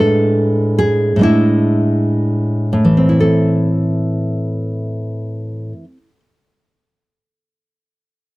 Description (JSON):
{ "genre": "romantic piece for solo classical guitar", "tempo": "56-76 BPM", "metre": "4/4", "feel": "rubato", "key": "A minor", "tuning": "A4 = 440 Hz", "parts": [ { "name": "nylon-string guitar", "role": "solo", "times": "0.0-6.2 s", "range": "A2 to A4", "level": "-13 LUFS", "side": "equal", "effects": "none" } ], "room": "light reverb", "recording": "dry, close 1970s-style studio recording", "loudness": "-13 LUFS", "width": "side -19 dB against mid", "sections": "0.0-3.2 A section; 3.2-7.3 B section", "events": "slowing down 0.0-3.2", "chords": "0.0 E7/A; 3.2 Am", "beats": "0.36 1.23 2.18 | 3.22 4.23 5.22" }